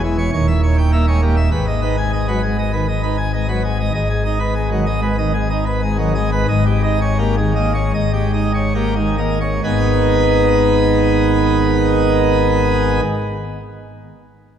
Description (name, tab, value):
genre	classical, organ toccata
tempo	65-102 BPM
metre	4/4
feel	straight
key	G# minor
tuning	A4 = 440 Hz
part	pipe organ, plenum	solo	0.0-13.0 s	D#1 to G#5	-14 LUFS	equal	none
room	wet church reverb, RT60 2.8 s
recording	dark, warm production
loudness	-14 LUFS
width	side -9 dB against mid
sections	0.0-3.9 A section; 3.9-9.6 B section; 9.6-13.3 C section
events	slowing down 2.7-9.6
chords	0.3 D#7b9; 1.5 G#m; 6.5 D#7/G#; 9.6 G#m